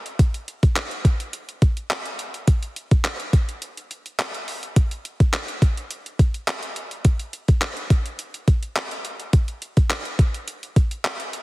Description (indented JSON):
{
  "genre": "pop",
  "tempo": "105 BPM",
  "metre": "4/4",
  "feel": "straight",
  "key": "none",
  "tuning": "none",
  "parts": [
    { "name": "crisp 8-bit digital drum machine", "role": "drums", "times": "0.1-11.4 s", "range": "handclaps, hi-hat, kick drum", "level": "-19 LUFS", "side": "equal", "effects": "overdrive" }
  ],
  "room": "light reverb",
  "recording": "heavily compressed radio sound",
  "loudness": "-20 LUFS",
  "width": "side -20 dB against mid",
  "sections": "0.0-4.8 A section; 4.8-11.4 B section",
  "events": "none",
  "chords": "none"
}